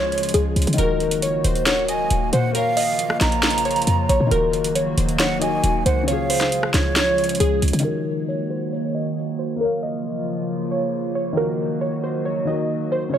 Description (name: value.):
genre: hip hop, trap.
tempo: 136 BPM.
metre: 4/4.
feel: half-time.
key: Eb dorian.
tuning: A4 = 439 Hz.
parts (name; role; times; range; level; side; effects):
glassy digital keys; melody; 0.0-13.2 s; Ab4 to Eb5; -24 LUFS; equal; chorus, low-pass filter.
breathy concert flute; second line; 0.0-7.4 s; Db5 to Bb5; -25 LUFS; right 3 dB; tape echo.
felt-muted upright piano; accompaniment; 0.0-13.2 s; Db3 to F5; -28 LUFS; left 5 dB; low-pass filter.
warbly tape-like pad; sustained chords; 0.0-13.2 s; Db3 to Gb4; -27 LUFS; right 1 dB; chorus, built-in reverb, low-pass filter.
short 808-style bass; bass; 0.0-7.8 s; Eb1 to Db3; -23 LUFS; equal; none.
trap drum kit; drums; 0.1-7.8 s; hi-hat, rim click, snare drum; -23 LUFS; equal; none.
room: light reverb.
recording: none.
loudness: -18 LUFS.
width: side -9 dB against mid.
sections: 0.0-7.8 A section; 7.8-13.2 B section.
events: filter sweep 7.8-13.2.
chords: 0.0 Db; 0.8 Ebm; 2.5 Bbm; 4.3 Ebm; 6.1 Db; 7.8 Ebm; 9.6 Bbm; 11.4 Ebm.